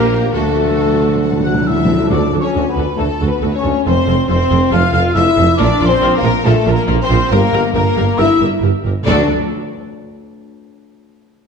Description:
cinematic, heroic adventure film score; 137 BPM; 4/4; straight; A4 = 440 Hz
rich symphonic violin section; melody; 0.0-9.3 s; A4 to F#5; -26 LUFS; left 3 dB
hollow concert flute; second line; 0.0-9.3 s; A4 to F#6; -22 LUFS; left 4 dB
warm clarinet; second line; 0.0-1.9 s; A4; -26 LUFS; left 5 dB
warm symphonic violin section; second line; 0.0-9.3 s; A4 to Bb5; -24 LUFS; left 4 dB
rich symphonic viola section; accompaniment; 0.0-9.3 s; F4 to Bb4; -24 LUFS; right 1 dB
dark French horn section; sustained chords; 0.0-9.3 s; A3 to F#4; -17 LUFS; left 3 dB
dark symphonic cello section; bass; 0.0-9.3 s; D2 to Bb3; -22 LUFS; right 3 dB
rich symphonic double bass section; bass; 0.0-9.3 s; F1 to D2; -19 LUFS; right 3 dB
warm tuba; bass; 0.0-9.3 s; F1 to D2; -21 LUFS; right 4 dB
timpani; percussion; 0.3-2.7, 9.1-9.3 s; D3; -20 LUFS; left 1 dB
wet scoring stage reverb, RT60 1.6 s; dark, warm production; -12 LUFS; side -6 dB against mid
0.0-2.1 A section; 2.1-9.1 B section; 9.1-10.8 C section
timpani fill 0.3-2.1
0.3 D; 3.9 F; 5.6 Bb5; 7.3 Gm; 9.1 D

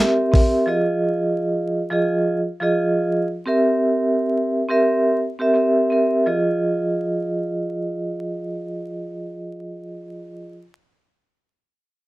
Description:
hip hop, boom-bap hip-hop; 86 BPM; 4/4; swing 54% on 16ths; F minor; A4 = 438 Hz
vibraphone with soft mallets; accompaniment; 0.0-10.5 s; F3 to E5; -19 LUFS; right 1 dB; cassette tape, high-pass filter, low-pass filter
dusty soul sampler-style drum kit; drums; 0.3-0.5 s; hi-hat, kick drum; -16 LUFS; equal
light reverb; vinyl crackle; -18 LUFS; side -17 dB against mid
0.0-6.3 A section; 6.3-9.1 B section
0.0 C7; 0.7 Fm7; 3.5 C7; 6.3 Fm7

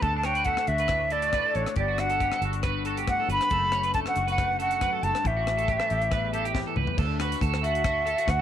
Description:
highlife guitar band; 138 BPM; 4/4; swing 53% on 16ths; D major; A4 = 440 Hz
jazz flute; melody; 0.0-8.4 s; C#5 to B5; -25 LUFS; equal
clean electric guitar; accompaniment; 0.0-8.4 s; E2 to A4; -34 LUFS; left 13 dB; analog chorus
electric guitar at the edge of break-up; arpeggios; 0.0-8.4 s; F#4 to C#5; -32 LUFS; right 12 dB; lush chorus
fingered electric bass; bass; 0.0-8.4 s; F#1 to D2; -30 LUFS; equal
tight funk drum kit; drums; 0.0-8.4 s; crash cymbal, hi-hat, kick drum, rim click, snare drum, toms; -32 LUFS; left 2 dB
light reverb, studio reverb; 1960s-style stereo with parts hard left and right; -23 LUFS; side -10 dB against mid
0.0-7.0 A section; 7.0-8.4 B section
drum fill 6.6-7.0; flute solo 7.0-8.4
0.0 D; 1.8 Gmaj7; 3.5 Dmaj7/F#; 5.3 A7; 7.0 Dadd9

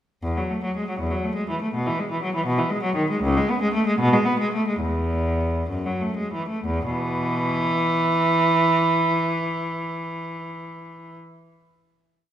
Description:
classical, baroque-style suite movement for unaccompanied cello; 60-84 BPM (dotted quarters); 6/8; rubato; E major; A4 = 441 Hz
rich cello; solo; 0.2-11.1 s; C#2 to B3; -21 LUFS; equal
wet recital hall reverb, RT60 1.6 s; minimal, uncompressed stereo recording; -21 LUFS; side -10 dB against mid
0.2-6.7 A section; 6.7-10.4 final chord
slowing down 2.4-6.7
0.2 E; 1.7 B5; 3.2 A/C#; 4.0 G#m/B; 4.8 N.C.; 6.7 E5

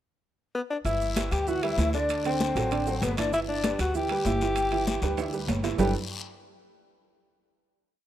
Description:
Afro-Cuban jazz; 195 BPM; 4/4; straight; G major; A4 = 441 Hz
breathy tenor saxophone; melody; 0.5-5.9 s; B3 to G4; -29 LUFS; left 2 dB
upright bass; bass; 0.8-5.9 s; G1 to D2; -31 LUFS; equal
guiro; percussion; 0.8-5.9 s; -39 LUFS; left 6 dB
breathy mellow silver concert flute; second line; 0.9-5.9 s; B4 to G5; -37 LUFS; left 5 dB
warm upright piano; accompaniment; 0.9-5.9 s; D3 to E5; -31 LUFS; right 7 dB
congas; percussion; 0.9-5.9 s; -31 LUFS; left 1 dB
maracas; percussion; 0.9-5.9 s; -45 LUFS; right 10 dB
timbales; percussion; 0.9-5.9 s; -38 LUFS; right 8 dB
little or no reverb; rough home demo mix; -25 LUFS; side -12 dB against mid
0.0-0.9 pickup bar; 0.9-5.8 A section; 5.8-7.0 final chord
drum fill 5.0-5.8
0.0 N.C.; 0.9 G6; 2.1 D7; 3.3 G6; 5.8 G69

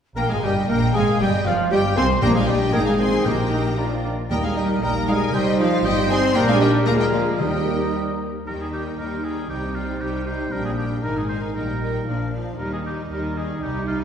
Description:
quick classical-period movement for symphony orchestra; 116 BPM; 2/4; straight; Eb major; A4 = 439 Hz
warm symphonic violin section; melody; 0.2-14.0 s; Eb5 to C6; -32 LUFS; left 4 dB
bright clarinet; second line; 0.2-7.9 s; F4 to C5; -30 LUFS; left 2 dB
mellow large flute ensemble; second line; 0.2-8.2 s; F5 to Ab6; -32 LUFS; equal
rich chamber violin section; second line; 0.2-14.0 s; D4 to Ab5; -30 LUFS; left 2 dB
warm oboe; second line; 0.2-14.0 s; F4 to F5; -32 LUFS; right 1 dB
mellow bassoon; accompaniment; 0.2-8.2 s; Eb3 to C4; -31 LUFS; right 2 dB
rich studio viola section; accompaniment; 0.2-14.0 s; Eb3 to Ab4; -27 LUFS; right 1 dB
dark French horn section; sustained chords; 0.2-14.0 s; Eb3 to F4; -28 LUFS; left 1 dB
clear trumpet section; stabs; 0.2-8.2 s; F4 to C5; -28 LUFS; equal
clear chamber cello section; bass; 0.2-14.0 s; Ab2 to C4; -27 LUFS; right 2 dB
clear chamber double bass section; bass; 0.2-14.0 s; F1 to Eb2; -26 LUFS; right 1 dB
timpani; percussion; 2.2-3.7, 7.4-8.2 s; Bb2 to Eb3; -28 LUFS; left 1 dB
wet scoring stage reverb, RT60 1.7 s; heard from further back in the room; -19 LUFS; side -8 dB against mid
0.2-8.5 A section; 8.5-14.0 A section
0.2 Fm11/G; 1.2 C5; 2.2 Gm/Bb; 2.7 Ab; 3.3 Eb/Bb; 3.8 Bb; 4.3 Eb; 5.3 Cm; 6.4 Gm/Bb; 6.9 Bb7/D; 7.4 Eb; 9.5 Cm; 10.5 Gm/Bb; 11.0 Ab; 11.6 Eb/Bb; 12.1 Bb; 12.6 Eb

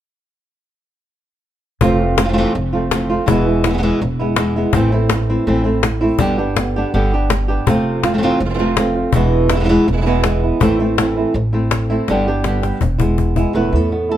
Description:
flamenco; 164 BPM; 4/4; straight; A4 = 440 Hz
flamenco guitar; melody; 1.8-14.2 s; E2 to B4; -17 LUFS; equal; tape echo
flamenco guitar; stabs; 1.8-14.2 s; B2 to G4; -22 LUFS; right 5 dB
upright bass; bass; 1.8-14.2 s; E1 to E2; -20 LUFS; equal
cajon; percussion; 1.8-13.4 s; -18 LUFS; left 5 dB
light reverb; -14 LUFS; side -11 dB against mid
1.8-13.6 A section
drum fill 12.1-13.6
1.8 Fmaj7; 3.3 E; 4.7 Am; 6.2 G; 7.7 Fmaj7; 9.1 E; 10.6 Am; 12.1 G; 12.8 E; 13.6 Esus4

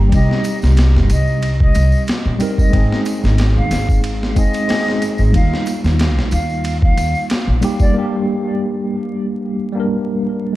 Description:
trip hop; 92 BPM; 4/4; swing 54% on 16ths; A4 = 442 Hz
tine electric piano; accompaniment; 0.0-10.6 s; G3 to Bb4; -20 LUFS; equal; overdrive, fast stereo tremolo, harmonic tremolo, vintage 12-bit sampler grit, tape echo
upright bass; bass; 0.0-7.6 s; G1 to Eb2; -15 LUFS; equal; tube saturation
bright wooden flute; melody; 0.1-8.0 s; D5 to F5; -25 LUFS; equal; tape echo
boom bap sampler-style drum kit; drums; 0.1-7.9 s; hi-hat, kick drum, ride cymbal, snare drum; -18 LUFS; equal
tambourine and triangle; percussion; 0.1-7.9 s; -38 LUFS; left 1 dB
digital ambience; dark, warm production, vinyl crackle; -14 LUFS; side -16 dB against mid
0.0-10.6 A section
break 7.9-10.6
0.1 Cm; 2.7 Ab; 5.3 Ebadd9; 7.9 Gm

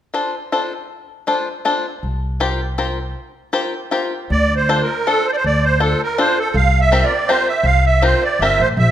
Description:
musette waltz; 160 BPM; 3/4; straight; D minor; A4 = 439 Hz
bluegrass banjo; accompaniment; 0.1-8.6 s; C4 to C5; -20 LUFS; left 3 dB
upright bass; bass; 2.0-8.9 s; G1 to D2; -18 LUFS; equal
musette accordion; melody; 4.3-8.9 s; A4 to F5; -16 LUFS; right 3 dB
moderate recital hall reverb, RT60 1.4 s; minimal, uncompressed stereo recording; -15 LUFS; side -11 dB against mid
0.0-4.3 A section; 4.3-8.9 B section
0.0 Dm7; 2.0 C7sus4; 4.3 Dm7; 6.5 C7sus4

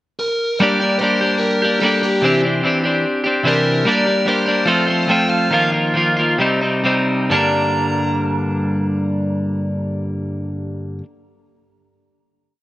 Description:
rock; 127-148 BPM; 4/4; straight; G minor; A4 = 439 Hz
biting lead guitar; melody; 0.2-11.0 s; G4 to Bb5; -22 LUFS; right 1 dB; overdrive
twelve-string electric guitar; riff; 0.6-11.0 s; G2 to G4; -16 LUFS; equal; spring reverb
light reverb; rough home demo mix; -15 LUFS; side -16 dB against mid
0.0-0.6 pickup bar; 0.6-7.3 interlude; 7.3-11.1 final chord
slowing down 3.9-7.3
0.0 N.C.; 0.6 Gm; 2.2 Cadd9; 3.9 Gm; 4.7 F; 5.5 Ebsus2; 6.4 Cm; 7.3 Gm

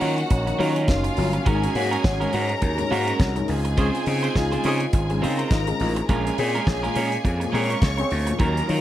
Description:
disco; 104 BPM; 4/4; swing 56% on 16ths; A4 = 439 Hz
rich studio string section; second line; 0.0-8.8 s; F4 to Db6; -29 LUFS; right 1 dB
dark baby grand piano; accompaniment; 0.0-8.8 s; Ab2 to Ab4; -28 LUFS; left 5 dB
electric guitar at the edge of break-up; accompaniment; 0.0-8.7 s; Gb3 to C5; -29 LUFS; right 5 dB
mellow French horn section; sustained chords; 0.0-8.8 s; Db3 to Gb4; -30 LUFS; right 1 dB
gritty slap bass; bass; 0.0-8.8 s; Gb1 to Eb3; -25 LUFS; equal; overdrive
damped 70s drum kit; drums; 0.0-8.8 s; hi-hat, kick drum, snare drum; -25 LUFS; equal
warm horn section; stabs; 3.8-4.8 s; F3 to Ab4; -28 LUFS; right 1 dB
light reverb, small room ambience; -20 LUFS; side -12 dB against mid
0.0-8.8 A section
band accent 3.8-6.1
0.0 Ebm9; 1.5 Ab9sus4; 3.5 Dbmaj7; 6.1 Bbm7

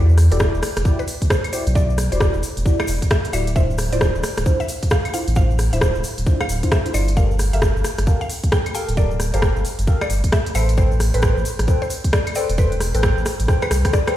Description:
UK garage, two-step garage; 133 BPM; 4/4; swing 62% on 16ths; E phrygian; A4 = 440 Hz
mallet-like synth pluck; melody; 0.0-14.1 s; A4 to G5; -30 LUFS; left 1 dB; chorus, ping-pong delay
deep mellow chord stab; stabs; 0.0-14.1 s; D4 to G5; -26 LUFS; equal; chorus, phaser, ping-pong delay
saturated sub bass; bass; 0.0-13.8 s; D1 to E2; -18 LUFS; equal; tube saturation
tube shaker; percussion; 0.1-14.1 s; -36 LUFS; left 5 dB
garage drum kit; drums; 0.2-14.1 s; claves, hi-hat, rim click; -24 LUFS; equal
electronic kick drum; drums; 0.4-14.0 s; -20 LUFS; equal
little or no reverb; played on a big sound system in a bare room, stone room reverb; -16 LUFS; side -13 dB against mid
0.0-14.2 A section
drum fill 13.5-14.2
0.0 Em9; 3.6 Dm9; 7.2 Gm9; 10.6 Am9

